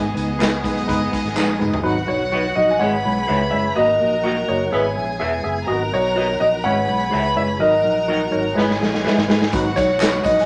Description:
uptempo 1960s-style soul; 125 BPM; 4/4; straight; A4 = 440 Hz
warm grand piano; melody; 0.0-10.5 s; C#5 to G#5; -23 LUFS; equal
rich chamber string section; second line; 0.0-10.5 s; B3 to B5; -28 LUFS; equal
tine electric piano; accompaniment; 0.0-10.4 s; F#3 to E5; -25 LUFS; equal
tonewheel organ; sustained chords; 0.0-10.5 s; D#3 to G#4; -33 LUFS; equal; slow rotary speaker, chorus vibrato
fingered electric bass; bass; 0.0-10.5 s; E1 to G#2; -31 LUFS; equal
raw garage drum kit; drums; 0.2-1.8, 8.6-10.5 s; hi-hat, kick drum, snare drum, toms; -24 LUFS; equal
tambourine and handclaps; percussion; 0.2-1.7, 9.5-10.4 s; -32 LUFS; equal
electric guitar through a small old amp; stabs; 0.4-10.1 s; F#4 to E5; -29 LUFS; equal; vibrato effect
mellow horn section; second line; 0.6-8.7 s; D#3 to C#5; -27 LUFS; equal
wet studio reverb, RT60 0.7 s; -19 LUFS; mono
0.0-1.8 A section; 1.8-10.5 B section
drum fill 1.4-1.8, 8.6-9.5
0.0 G#m; 1.8 B/G#; 2.8 C#m/G#; 3.8 D#m/G#; 4.7 E/G#; 5.7 B/G#; 6.6 C#m/G#; 7.6 D#m/G#; 8.6 E/G#; 9.5 B/G#
0.40 0.88 1.36 | 1.84 2.32 2.80 3.28 | 3.76 4.24 4.72 5.21 | 5.68 6.17 6.64 7.13 | 7.61 8.09 8.57 9.05 | 9.53 10.01

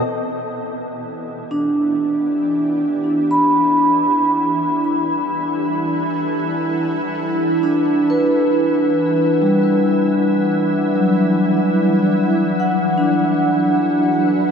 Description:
ambient; free time; E minor; A4 = 438 Hz
shimmering ambient pad; sustained chords; 0.0-14.5 s; E3 to F#5; -25 LUFS; equal; chorus, built-in reverb
organ-like drone; drone; 0.1-14.5 s; E3 to E4; -23 LUFS; equal; ensemble chorus, built-in reverb
vibraphone with soft mallets; arpeggios; 1.5-14.5 s; F#3 to B5; -16 LUFS; equal; ping-pong delay
wet huge ambient reverb, RT60 7.7 s; -15 LUFS; side -6 dB against mid
0.1-14.5 A section
fade-in on ambient pad 0.1-14.5
0.1 Em7; 12.3 D69
free time

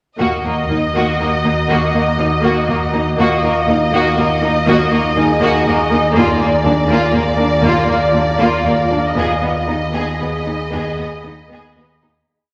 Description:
cinematic, suspense film score; 60 BPM; 3/4; uneven beats; Eb harmonic minor; A4 = 439 Hz
rich studio violin section; melody; 0.2-12.1 s; D5 to Eb5; -22 LUFS; equal
rich studio violin section; second line; 0.2-12.1 s; Bb3 to Ab4; -22 LUFS; equal
rich studio viola section; accompaniment; 0.2-12.1 s; Bb3 to Cb4; -23 LUFS; equal
wind-like tuned noise texture; sustained chords; 0.9-12.3 s; Eb4 to Cb6; -26 LUFS; equal; built-in reverb
rich studio cello section; bass; 0.2-12.1 s; Eb2; -26 LUFS; equal
rich studio double bass section; bass; 0.2-11.8 s; Eb2; -29 LUFS; equal
sub bass with octave; drone; 0.2-12.2 s; Eb2; -24 LUFS; equal
vibraphone with medium hard mallets; texture; 1.7-12.3 s; F4 to D6; -26 LUFS; equal
wet scoring stage reverb, RT60 1.7 s; -15 LUFS; mono
0.2-12.3 A section
fade-out 9.2-12.3
0.2 Ebm; 6.2 Bb/Eb; 9.2 Abm/Eb
| 0.19 1.20 2.19 | 3.19 4.18 5.17 | 6.15 7.13 8.13 | 9.16 10.20 11.24

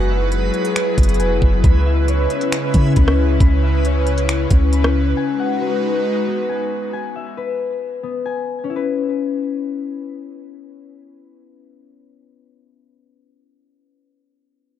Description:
hip hop, atmospheric cloud-rap; 136 BPM; 4/4; half-time; C# minor; A4 = 442 Hz
airy breathy pad; sustained chords; 0.0-6.9 s; C#3 to B4; -21 LUFS; equal; chorus, sidechain pumping
concert harp; arpeggios; 0.0-13.3 s; B3 to B5; -23 LUFS; left 7 dB; digital delay
soft 808-style bass; bass; 0.0-5.1 s; E1 to C#3; -17 LUFS; equal
backwards swelling texture; texture; 0.0-3.4 s; G#3 to C#5; -30 LUFS; right 3 dB; built-in reverb
trap drum kit; drums; 0.3-4.9 s; finger snaps, hi-hat, kick drum, rim click; -16 LUFS; equal
little or no reverb; dark, warm production; -16 LUFS; side -10 dB against mid
0.0-8.7 A section; 8.7-12.2 B section
0.0 F#9sus4; 1.6 C#m7; 5.2 G#m7; 6.9 E/B
0.32 0.76 1.20 | 1.64 2.08 2.52 2.96 | 3.40 3.85 4.29 4.73 | 5.17 5.61 6.05 6.49 | 6.93 7.38 7.82 8.26 | 8.70 9.14 9.58 10.02 | 10.46 10.90 11.35 11.79

